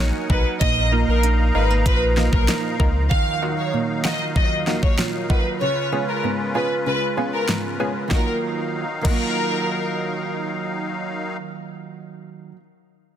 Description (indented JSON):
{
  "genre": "dancehall",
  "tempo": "96 BPM",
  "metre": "4/4",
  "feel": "straight",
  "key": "Eb minor",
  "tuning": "A4 = 440 Hz",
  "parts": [
    { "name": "musette accordion", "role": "sustained chords", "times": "0.0-11.4 s", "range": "Db3 to Bb5", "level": "-29 LUFS", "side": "left 2 dB", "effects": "sidechain pumping" },
    { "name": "nylon-string guitar", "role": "arpeggios", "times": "0.0-12.6 s", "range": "Bb2 to F4", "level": "-27 LUFS", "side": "right 7 dB", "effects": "none" },
    { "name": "sub bass with octave", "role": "bass", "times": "0.0-3.1 s", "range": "Ab1 to Db2", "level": "-20 LUFS", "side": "equal", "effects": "none" },
    { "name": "warm studio violin section", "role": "melody", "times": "0.3-9.9 s", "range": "Bb4 to F5", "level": "-25 LUFS", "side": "left 1 dB", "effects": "digital delay" },
    { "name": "punchy chord stab", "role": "accompaniment", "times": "0.3-12.1 s", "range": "Eb2 to A#4", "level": "-29 LUFS", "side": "left 2 dB", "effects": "chorus" },
    { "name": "pop drum kit", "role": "drums", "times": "0.3-9.2 s", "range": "crash cymbal, hi-hat, kick drum, snare drum", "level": "-21 LUFS", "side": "equal", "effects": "none" }
  ],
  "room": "light reverb, small room ambience",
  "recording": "dense, heavily limited modern master",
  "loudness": "-19 LUFS",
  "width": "side -10 dB against mid",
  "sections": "0.0-3.1 A section; 3.1-8.1 B section; 8.1-10.6 C section",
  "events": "kick muted 5.6-8.1",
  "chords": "0.0 Bmaj7; 0.6 Bbsus4; 3.1 Ebmadd9; 5.6 Db7; 8.1 Ebmadd9"
}